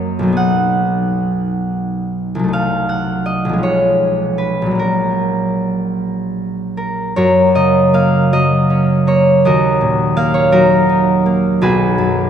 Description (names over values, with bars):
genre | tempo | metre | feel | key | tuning
classical, solo harp piece | 48-57 BPM (dotted quarters) | 6/8 | rubato | F# major | A4 = 438 Hz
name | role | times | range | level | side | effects
concert harp | solo | 0.0-12.3 s | A#1 to F#5 | -12 LUFS | equal | none
room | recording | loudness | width
wet cathedral reverb, RT60 4.4 s | none | -12 LUFS | side -8 dB against mid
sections
0.0-7.2 A section; 7.2-12.3 A section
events
none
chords
0.4 B; 2.5 Cdim7; 3.6 C#7/B; 4.8 F#/A#; 7.2 F#; 9.4 D#m; 11.6 G#m7/B